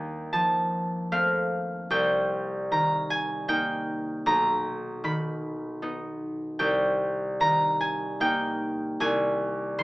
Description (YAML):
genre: classical, solo harp piece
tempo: 76 BPM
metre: 3/4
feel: rubato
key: C minor from 6.6 s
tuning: A4 = 440 Hz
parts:
  - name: concert harp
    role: solo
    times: 0.0-9.8 s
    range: B1 to C6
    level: -24 LUFS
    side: equal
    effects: none
room: light reverb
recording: small speaker sound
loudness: -24 LUFS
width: side -20 dB against mid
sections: 0.0-9.8 A section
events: none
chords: 0.0 F9/Eb; 1.9 Cm7; 4.3 Bmaj7; 6.6 Cm7; 9.0 Fm7/C (rootless)